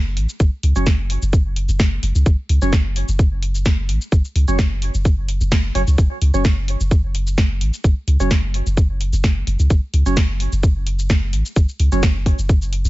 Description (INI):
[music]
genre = minimal techno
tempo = 129 BPM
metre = 4/4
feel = swing 54% on 16ths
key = F# minor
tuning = A4 = 439 Hz
[part]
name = punchy sub bass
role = bass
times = 0.0-12.9 s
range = F#1 to C#2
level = -18 LUFS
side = equal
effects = sidechain pumping
[part]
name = booming analog drum machine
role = drums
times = 0.2-12.9 s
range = cabasa, hi-hat, snare drum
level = -26 LUFS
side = equal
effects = none
[part]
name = electronic kick drum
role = drums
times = 0.4-12.6 s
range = none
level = -15 LUFS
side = equal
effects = overdrive
[part]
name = percussive organ stab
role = stabs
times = 0.8-12.0 s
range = F#3 to C#5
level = -25 LUFS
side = right 3 dB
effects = wide subtle chorus, digital delay
[sound]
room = digital ambience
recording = nothing above 7.7 kHz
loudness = -15 LUFS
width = side -18 dB against mid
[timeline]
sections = 0.0-12.9 A section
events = none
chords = 0.0 F#5